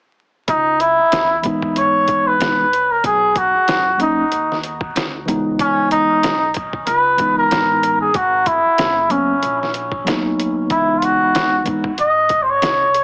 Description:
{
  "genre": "hip hop, jazz-hop",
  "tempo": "94 BPM",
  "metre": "4/4",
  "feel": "swing 57% on 16ths",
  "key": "C# dorian",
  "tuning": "A4 = 440 Hz",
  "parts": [
    { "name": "trumpet with cup mute", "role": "melody", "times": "0.5-13.0 s", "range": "C#4 to D#5", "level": "-15 LUFS", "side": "equal", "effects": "tape echo" },
    { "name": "upright bass", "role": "bass", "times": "0.5-13.0 s", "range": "F#1 to G#2", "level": "-34 LUFS", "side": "equal", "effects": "none" },
    { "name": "trip hop sampler-style drum kit", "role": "drums", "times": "0.5-13.0 s", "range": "hi-hat, kick drum, snare drum", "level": "-23 LUFS", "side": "equal", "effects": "none" },
    { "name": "mellow tine electric piano", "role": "accompaniment", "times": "1.4-11.9 s", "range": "E3 to D#4", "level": "-20 LUFS", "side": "equal", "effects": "fast stereo tremolo" }
  ],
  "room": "moderate studio reverb, RT60 0.6 s",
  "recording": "heavily compressed radio sound, vinyl crackle, small speaker sound",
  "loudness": "-14 LUFS",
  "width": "side -30 dB against mid",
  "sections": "0.5-13.0 A section",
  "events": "none",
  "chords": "0.5 C#m9; 3.0 B; 5.3 C#m9; 8.1 G#m11; 10.7 C#m9"
}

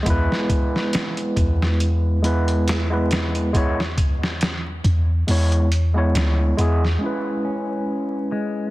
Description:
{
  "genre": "trip hop",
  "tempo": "69 BPM",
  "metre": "4/4",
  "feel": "swing 55% on 16ths",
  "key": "unclear",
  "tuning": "A4 = 440 Hz",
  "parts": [
    { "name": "overdriven tine electric piano", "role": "accompaniment", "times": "0.0-8.7 s", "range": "G#3 to C#5", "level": "-23 LUFS", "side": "equal", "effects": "harmonic tremolo, vintage 12-bit sampler grit, tape echo" },
    { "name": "soft 808-style bass", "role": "bass", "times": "0.0-7.0 s", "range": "D2 to E2", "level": "-20 LUFS", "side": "equal", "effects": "none" },
    { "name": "trip hop sampler-style drum kit", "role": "drums", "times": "0.1-7.0 s", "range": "hi-hat, kick drum, snare drum", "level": "-23 LUFS", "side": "equal", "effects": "none" },
    { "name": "electric guitar at the edge of break-up", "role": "arpeggios", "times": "7.4-8.7 s", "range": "G#3 to C#4", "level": "-27 LUFS", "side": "left 4 dB", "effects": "vintage 12-bit sampler grit, low-pass filter, tape echo" }
  ],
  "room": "digital ambience",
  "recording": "dense, heavily limited modern master, vinyl crackle",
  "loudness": "-18 LUFS",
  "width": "side -18 dB against mid",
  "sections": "0.0-7.0 A section; 7.0-8.7 B section",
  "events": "kick drops out 5.3-7.0",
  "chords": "0.1 E; 7.0 C#m7"
}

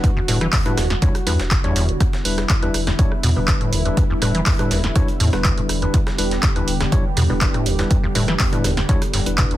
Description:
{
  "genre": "acid house",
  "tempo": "122 BPM",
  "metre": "4/4",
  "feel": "straight",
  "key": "unclear",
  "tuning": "A4 = 440 Hz",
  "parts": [
    { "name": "warm analog pad", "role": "sustained chords", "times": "0.0-9.6 s", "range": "D3 to G4", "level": "-26 LUFS", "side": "right 1 dB", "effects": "chorus, sidechain pumping" },
    { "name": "deep acid bass", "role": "riff", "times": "0.0-9.6 s", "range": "E1 to E3", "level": "-23 LUFS", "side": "equal", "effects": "sidechain pumping" },
    { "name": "tine electric piano", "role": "stabs", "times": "0.0-9.6 s", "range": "G3 to C#5", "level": "-26 LUFS", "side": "left 3 dB", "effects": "medium tremolo, dub echo" },
    { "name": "breakbeat sampler-style drum kit", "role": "drums", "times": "0.0-9.5 s", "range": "hi-hat, snare drum", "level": "-31 LUFS", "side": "right 2 dB", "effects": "sidechain pumping on hats, high-pass filter on hats, small room ambience, soft clipping on snare, high-pass filter on snare" },
    { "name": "electronic kick drum", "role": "drums", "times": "0.0-9.5 s", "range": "none", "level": "-19 LUFS", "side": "equal", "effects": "small room ambience" },
    { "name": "punchy analog drum machine", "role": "drums", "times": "0.0-9.6 s", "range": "handclaps, hi-hat, rim click, snare drum", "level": "-24 LUFS", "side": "right 1 dB", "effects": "small room ambience" },
    { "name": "warm sub bass", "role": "bass", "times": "0.3-9.5 s", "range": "E1 to E2", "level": "-23 LUFS", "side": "equal", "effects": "tube saturation, sidechain pumping" }
  ],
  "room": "light reverb",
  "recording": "dense, heavily limited modern master",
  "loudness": "-16 LUFS",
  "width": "side -14 dB against mid",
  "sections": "0.0-9.6 A section",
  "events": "none",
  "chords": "0.0 Em7"
}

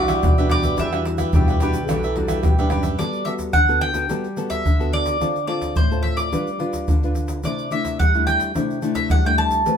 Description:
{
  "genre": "samba and choro",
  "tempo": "108 BPM",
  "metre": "4/4",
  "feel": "straight",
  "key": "G major",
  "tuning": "A4 = 440 Hz",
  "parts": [
    { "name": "mandolin", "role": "melody", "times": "0.0-9.8 s", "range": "C5 to A5", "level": "-22 LUFS", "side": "right 1 dB", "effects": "none" },
    { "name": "growling trombone", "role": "second line", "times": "0.0-3.0 s", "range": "F#4 to A4", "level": "-26 LUFS", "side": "right 1 dB", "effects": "none" },
    { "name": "nylon-string guitar", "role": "accompaniment", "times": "0.0-9.8 s", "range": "A2 to B4", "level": "-25 LUFS", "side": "left 2 dB", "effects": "none" },
    { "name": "upright bass", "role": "bass", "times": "0.0-3.0 s", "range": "B1 to F#2", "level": "-26 LUFS", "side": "equal", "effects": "none" },
    { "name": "cavaquinho", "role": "accompaniment", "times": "0.1-3.0 s", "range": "D4 to E5", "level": "-28 LUFS", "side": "right 4 dB", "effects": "none" },
    { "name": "tube shaker, surdo, pandeiro and tamborim", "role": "percussion", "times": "0.1-9.8 s", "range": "none", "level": "-21 LUFS", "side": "equal", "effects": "none" }
  ],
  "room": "moderate studio reverb, RT60 0.5 s",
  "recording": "minimal, uncompressed stereo recording",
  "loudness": "-18 LUFS",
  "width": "side -8 dB against mid",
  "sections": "0.0-3.0 A section; 3.0-9.8 B section",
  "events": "none",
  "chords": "0.0 Em9; 3.0 Gmaj9; 5.2 Dm7; 6.3 G7; 7.4 C69"
}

